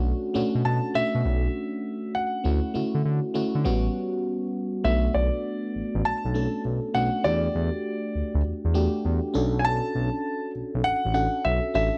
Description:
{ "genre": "R&B, new jack swing", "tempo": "100 BPM", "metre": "4/4", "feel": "swing 65% on 16ths", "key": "B minor", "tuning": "A4 = 439 Hz", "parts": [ { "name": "FM electric piano", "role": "accompaniment", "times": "0.0-12.0 s", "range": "G3 to A4", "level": "-30 LUFS", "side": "equal", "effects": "chorus" }, { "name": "smooth gliding synth bass", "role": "bass", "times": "0.0-11.9 s", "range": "A1 to D3", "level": "-28 LUFS", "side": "equal", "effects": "none" }, { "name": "warm concert grand piano", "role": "melody", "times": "0.7-12.0 s", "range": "D5 to A5", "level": "-30 LUFS", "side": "equal", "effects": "slapback echo" } ], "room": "little or no reverb", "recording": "dry, close 1970s-style studio recording", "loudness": "-26 LUFS", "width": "mono", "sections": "0.0-4.8 A section; 4.8-12.0 B section", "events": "none", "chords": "0.0 Bm7; 2.4 Dmaj7; 3.6 A13; 4.8 Bm7; 7.2 Em11; 9.3 Bm7" }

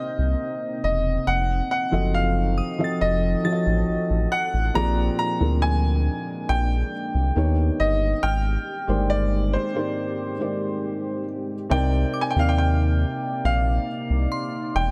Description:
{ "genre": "contemporary R&B", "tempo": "69 BPM", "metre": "4/4", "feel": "straight", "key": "C minor", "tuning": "A4 = 442 Hz", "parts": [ { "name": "bright baby grand piano", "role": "melody", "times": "0.0-14.9 s", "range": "C5 to Bb5", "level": "-29 LUFS", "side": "equal", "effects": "none" }, { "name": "felt-muted upright piano", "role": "accompaniment", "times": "0.0-14.9 s", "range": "Ab2 to Eb5", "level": "-30 LUFS", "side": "equal", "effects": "none" }, { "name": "deep dark ambient pad", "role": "sustained chords", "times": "0.0-14.9 s", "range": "C3 to D5", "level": "-34 LUFS", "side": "equal", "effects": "chorus, built-in reverb" }, { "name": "glassy synth bell", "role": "texture", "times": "0.0-14.9 s", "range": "C6 to A6", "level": "-37 LUFS", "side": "equal", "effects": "chorus, tape echo" }, { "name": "round analog bass", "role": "bass", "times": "0.2-14.9 s", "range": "E1 to Eb2", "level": "-24 LUFS", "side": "equal", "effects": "none" } ], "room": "studio reverb", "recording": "none", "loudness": "-23 LUFS", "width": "mono", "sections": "0.0-11.7 A section; 11.7-14.9 A section", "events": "break 10.0-11.7", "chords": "0.0 Cm9; 1.3 F7b9; 4.7 Bb13; 7.4 Ebaug7; 8.2 Abmaj9#11; 11.7 Cm9" }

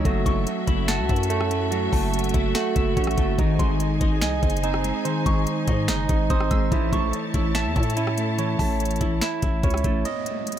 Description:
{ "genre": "hip hop, trap", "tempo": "144 BPM", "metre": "4/4", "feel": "half-time", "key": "unclear", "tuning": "A4 = 440 Hz", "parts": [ { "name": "soft synth bell", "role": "second line", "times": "0.0-8.8 s", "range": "A5 to E6", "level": "-34 LUFS", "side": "left 1 dB", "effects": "chorus, phaser, tape echo" }, { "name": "twelve-string electric guitar", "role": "accompaniment", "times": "0.0-10.1 s", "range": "D#3 to E5", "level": "-28 LUFS", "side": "left 2 dB", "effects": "low-pass filter, tape echo" }, { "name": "bright symphonic string section", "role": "sustained chords", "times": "0.0-10.0 s", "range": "C#4 to A5", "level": "-33 LUFS", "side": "left 2 dB", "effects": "none" }, { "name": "barky tine electric piano", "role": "arpeggios", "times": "0.0-10.6 s", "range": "A3 to A5", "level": "-27 LUFS", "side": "right 8 dB", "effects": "low-pass filter, tape echo" }, { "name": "growling 808-style bass", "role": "bass", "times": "0.0-10.0 s", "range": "F#1 to A2", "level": "-26 LUFS", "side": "left 1 dB", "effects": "none" }, { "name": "trap drum kit", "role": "drums", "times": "0.1-10.6 s", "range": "finger snaps, hi-hat, kick drum, rim click, snare drum", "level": "-25 LUFS", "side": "left 1 dB", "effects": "none" }, { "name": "downlifter", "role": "sound effects", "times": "10.1-10.6 s", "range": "none", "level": "-32 LUFS", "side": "equal", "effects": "none" } ], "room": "little or no reverb", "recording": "echo-heavy mix", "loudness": "-20 LUFS", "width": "side -10 dB against mid", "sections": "0.0-10.1 A section", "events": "break 10.1-10.6", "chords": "0.1 F#m7; 3.4 G#; 6.7 A; 10.1 N.C." }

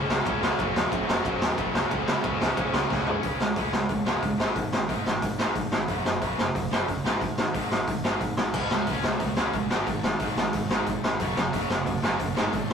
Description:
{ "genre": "punk rock", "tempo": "181 BPM", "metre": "4/4", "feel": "straight", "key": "unclear", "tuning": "A4 = 440 Hz", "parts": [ { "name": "distorted electric guitar", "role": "riff", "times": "0.0-12.7 s", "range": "Gb2 to Db4", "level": "-33 LUFS", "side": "right 6 dB", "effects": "distortion" }, { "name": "sludgy distorted guitar", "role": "riff", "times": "0.0-3.2, 8.5-12.7 s", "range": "Gb2 to Db4", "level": "-34 LUFS", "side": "right 1 dB", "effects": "overdrive" }, { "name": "tight distorted guitar", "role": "riff", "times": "0.0-12.7 s", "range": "Gb2 to Db4", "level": "-32 LUFS", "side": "left 5 dB", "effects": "distortion" }, { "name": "growling picked electric bass", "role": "bass", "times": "0.0-12.7 s", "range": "Gb1 to Db3", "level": "-37 LUFS", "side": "equal", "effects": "overdrive" }, { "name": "raw garage drum kit", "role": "drums", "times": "0.1-12.7 s", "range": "crash cymbal, hi-hat, kick drum, ride cymbal, snare drum, toms", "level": "-26 LUFS", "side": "equal", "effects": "none" } ], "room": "light reverb", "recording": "rough rehearsal-room recording", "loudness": "-24 LUFS", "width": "side -7 dB against mid", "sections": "0.0-3.2 A section; 3.2-12.7 B section", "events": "drum fill 2.9-3.2", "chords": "0.0 Db5; 0.6 Gb5; 1.9 Db5; 4.4 Ab5; 5.9 Gb5; 7.0 Ab5; 8.5 Db5; 9.7 Ab5; 11.2 Gb5" }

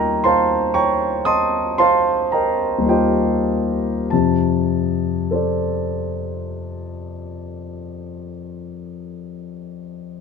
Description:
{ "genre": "classical, impressionist solo piano", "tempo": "48-60 BPM", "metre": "5/4", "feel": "rubato", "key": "unclear", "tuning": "A4 = 440 Hz", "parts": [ { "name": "warm concert grand piano", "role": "solo", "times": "0.0-10.2 s", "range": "Eb2 to Eb6", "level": "-18 LUFS", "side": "equal", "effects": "none" } ], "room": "light reverb", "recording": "minimal, uncompressed stereo recording", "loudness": "-16 LUFS", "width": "side -5 dB against mid", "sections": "0.0-4.1 A section; 4.1-10.0 B section", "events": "slowing down 0.0-4.1", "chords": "0.0 Eb9; 4.1 F6" }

